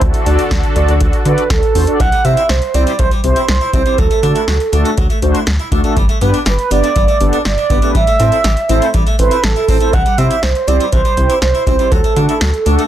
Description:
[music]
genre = synth-pop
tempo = 121 BPM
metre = 4/4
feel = straight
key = unclear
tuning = A4 = 440 Hz
[part]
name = lush unison pad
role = sustained chords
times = 0.0-2.0 s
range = D3 to A4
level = -22 LUFS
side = equal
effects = chorus
[part]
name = rubbery square bass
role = bass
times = 0.0-12.8 s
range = G1 to D3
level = -15 LUFS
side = equal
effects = none
[part]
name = electro analog drum machine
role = drums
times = 0.0-12.9 s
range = hi-hat, kick drum, snare drum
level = -16 LUFS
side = equal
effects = none
[part]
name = mellow synth brass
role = accompaniment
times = 0.3-12.8 s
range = A3 to D5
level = -18 LUFS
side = left 1 dB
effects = chorus
[part]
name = mellow horn-like synth lead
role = melody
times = 1.3-12.9 s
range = A4 to F#5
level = -16 LUFS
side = right 4 dB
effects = chorus, ping-pong delay
[part]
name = harpsichord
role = arpeggios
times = 2.0-12.9 s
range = E3 to E5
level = -24 LUFS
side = equal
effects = none
[sound]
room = light reverb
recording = dense, heavily limited modern master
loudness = -11 LUFS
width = side -11 dB against mid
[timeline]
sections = 0.0-2.0 A section; 2.0-12.9 B section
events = none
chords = 0.0 D; 2.0 C; 4.0 D; 6.0 Gadd9; 7.9 Am; 9.9 C; 11.9 D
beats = | 0.01 0.51 1.01 1.50 | 2.00 2.49 2.99 3.49 | 3.98 4.48 4.97 5.47 | 5.96 6.46 6.96 7.45 | 7.95 8.45 8.94 9.44 | 9.93 10.43 10.92 11.42 | 11.92 12.41

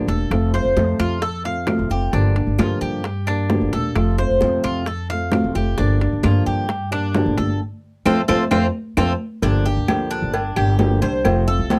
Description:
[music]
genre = latin, Cuban son and guajira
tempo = 132 BPM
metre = 4/4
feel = straight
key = G minor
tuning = A4 = 440 Hz
[part]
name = flamenco guitar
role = accompaniment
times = 0.0-11.8 s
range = C3 to G4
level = -25 LUFS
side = equal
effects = none
[part]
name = Cuban tres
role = arpeggios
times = 0.0-11.8 s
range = C4 to F5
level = -26 LUFS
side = equal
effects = none
[part]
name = upright bass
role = bass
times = 0.0-11.8 s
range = E1 to G2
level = -23 LUFS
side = equal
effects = none
[part]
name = congas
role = percussion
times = 0.1-11.8 s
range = none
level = -29 LUFS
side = equal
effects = none
[part]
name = timbales and agogo bells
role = percussion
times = 0.1-11.8 s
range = none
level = -30 LUFS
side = equal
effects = none
[part]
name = bongos and cowbell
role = percussion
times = 0.3-11.8 s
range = none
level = -30 LUFS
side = equal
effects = none
[part]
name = claves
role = percussion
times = 0.3-11.5 s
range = none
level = -34 LUFS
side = equal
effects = none
[sound]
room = little or no reverb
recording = close, detailed microphones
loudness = -20 LUFS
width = mono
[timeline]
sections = 0.0-9.4 A section; 9.4-11.8 B section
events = band accent 7.6-9.4; drum fill 8.5-9.4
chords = 0.3 F; 2.1 Gm7; 4.0 F; 5.8 Gm7; 7.6 F; 9.4 Gm7; 11.2 F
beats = | 0.31 0.77 1.22 1.68 | 2.13 2.59 3.05 3.50 | 3.96 4.41 4.87 5.33 | 5.78 6.24 6.69 7.15 | 7.60 8.06 8.51 8.97 | 9.43 9.88 10.34 10.79 | 11.25 11.70

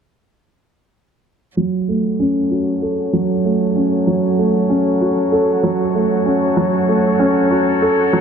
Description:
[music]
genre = electronica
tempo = 96 BPM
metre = 4/4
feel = straight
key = F# minor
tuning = A4 = 440 Hz
[part]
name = rich string quartet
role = sustained chords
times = 1.6-8.2 s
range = F#3 to C#5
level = -21 LUFS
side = left 2 dB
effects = none
[part]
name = felt-muted upright piano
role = riff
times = 1.6-8.2 s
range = F#3 to A4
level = -15 LUFS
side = right 1 dB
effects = ping-pong delay
[sound]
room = moderate huge ambient reverb, RT60 8.9 s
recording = low-pass filter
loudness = -14 LUFS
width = side -7 dB against mid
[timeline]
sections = 1.6-8.2 A section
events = filter sweep 1.6-8.2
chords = 1.6 F#m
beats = | 1.57 2.19 2.82 3.44 | 4.07 4.70 5.32 5.95 | 6.57 7.20 7.82

